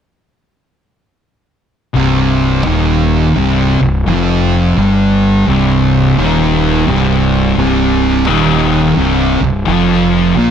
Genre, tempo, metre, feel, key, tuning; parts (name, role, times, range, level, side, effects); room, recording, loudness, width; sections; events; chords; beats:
metal; 86 BPM; 4/4; swing 63% on 8ths; C minor; A4 = 441 Hz
fuzz guitar; riff; 1.9-10.5 s; C2 to Bb3; -14 LUFS; left 8 dB; distortion
thick fuzz guitar; riff; 2.0-10.5 s; C2 to Bb3; -14 LUFS; right 9 dB; distortion
fuzz fingered electric bass; bass; 2.0-10.5 s; C1 to Bb1; -16 LUFS; equal; overdrive, tube saturation
light reverb, digital ambience; -10 LUFS; side -8 dB against mid
2.0-10.5 A section
2.0 Cm
| 1.95 2.66 3.36 4.06 | 4.76 5.47 6.17 6.87 | 7.57 8.27 8.97 9.67 | 10.37